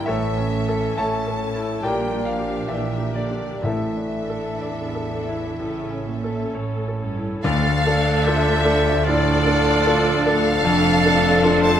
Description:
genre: classical, romantic movement for piano and orchestra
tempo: 60-78 BPM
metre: 4/4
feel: rubato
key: D minor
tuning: A4 = 441 Hz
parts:
  - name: bright concert grand piano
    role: melody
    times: 0.0-11.8 s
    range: D2 to A5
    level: -22 LUFS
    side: left 2 dB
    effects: none
  - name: rich symphonic violin section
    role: melody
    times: 0.0-11.8 s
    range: D5 to A5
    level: -29 LUFS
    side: left 2 dB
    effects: none
  - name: rich studio violin section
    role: second line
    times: 0.0-11.8 s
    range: D5 to A5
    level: -29 LUFS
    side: left 2 dB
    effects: none
  - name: rich symphonic viola section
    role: accompaniment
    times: 0.0-11.8 s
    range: C#4 to A4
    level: -27 LUFS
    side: right 1 dB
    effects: none
  - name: mellow French horn section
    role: sustained chords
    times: 0.0-11.8 s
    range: D3 to D4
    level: -32 LUFS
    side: left 3 dB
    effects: none
  - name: rich studio double bass section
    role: bass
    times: 0.1-11.8 s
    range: F1 to D2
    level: -29 LUFS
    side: right 4 dB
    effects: none
  - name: rich symphonic cello section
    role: bass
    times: 0.1-11.8 s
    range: D2 to C#3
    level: -29 LUFS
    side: right 4 dB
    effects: none
  - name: timpani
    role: percussion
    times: 3.6-8.6 s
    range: A2 to D3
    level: -29 LUFS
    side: left 1 dB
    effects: none
  - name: clear clarinet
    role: second line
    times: 7.4-11.8 s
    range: D4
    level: -29 LUFS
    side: right 1 dB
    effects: none
  - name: mellow hollow large flute ensemble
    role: second line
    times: 7.4-11.8 s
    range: A6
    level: -29 LUFS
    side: right 1 dB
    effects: none
  - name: warm oboe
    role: second line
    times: 7.4-11.8 s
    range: F4 to C5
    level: -27 LUFS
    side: right 2 dB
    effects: none
  - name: bright trombone section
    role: sustained chords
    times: 7.4-11.8 s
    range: D3 to F3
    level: -29 LUFS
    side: right 4 dB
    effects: none
room: moderate concert hall reverb, RT60 2.0 s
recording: close, detailed microphones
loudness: -18 LUFS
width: side -9 dB against mid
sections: 0.0-7.4 A section; 7.4-11.8 B section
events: none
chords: 0.1 A; 1.8 Gm/Bb; 3.6 Asus4; 5.6 A; 7.4 Dm; 10.7 Dm/F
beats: | 0.07 0.99 1.84 2.69 | 3.64 4.63 5.61 6.55 | 7.44 8.26 9.06 9.86 | 10.66 11.44

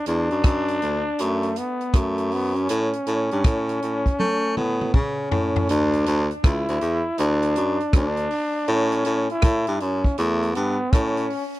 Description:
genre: roots reggae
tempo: 80 BPM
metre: 4/4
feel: swing 65% on 16ths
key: unclear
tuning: A4 = 445 Hz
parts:
  - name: growling trombone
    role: melody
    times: 0.0-11.4 s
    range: A3 to E4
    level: -25 LUFS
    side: equal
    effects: tape echo
  - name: breathy baritone saxophone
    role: bass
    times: 0.1-11.3 s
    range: C#2 to A3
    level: -23 LUFS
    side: equal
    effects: none
  - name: vintage drum kit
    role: drums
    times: 0.1-11.6 s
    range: hi-hat, kick drum, rim click, toms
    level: -20 LUFS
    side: equal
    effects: none
room: studio reverb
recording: dry, close 1970s-style studio recording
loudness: -20 LUFS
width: side -17 dB against mid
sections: 0.0-5.7 A section; 5.7-11.6 B section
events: drum fill 4.2-5.7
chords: 0.0 D; 2.7 A; 5.7 N.C.; 8.7 A5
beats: 0.44 1.19 1.94 | 2.69 3.44 4.19 4.94 | 5.68 6.43 7.18 7.93 | 8.68 9.43 10.18 10.93

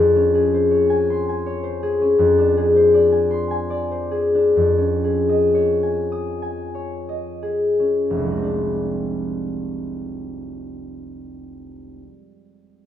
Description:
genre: classical, solo harp piece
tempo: 28-55 BPM (dotted quarters)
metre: 6/8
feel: rubato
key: F minor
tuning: A4 = 440 Hz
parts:
  - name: concert harp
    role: solo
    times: 0.0-12.3 s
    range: F1 to Eb6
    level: -18 LUFS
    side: left 1 dB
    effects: none
room: moderate large studio reverb, RT60 1.2 s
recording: minimal, uncompressed stereo recording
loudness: -17 LUFS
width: side -10 dB against mid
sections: 0.0-8.1 A section; 8.1-12.9 B section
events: slowing down 1.1-8.1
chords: 0.0 Dbmaj7/F; 2.2 Fm6; 4.6 Eb9sus4/F; 8.1 Fm6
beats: 1.10 | 2.20 3.33 | 4.58 6.13 | 8.10 9.89 | 11.61

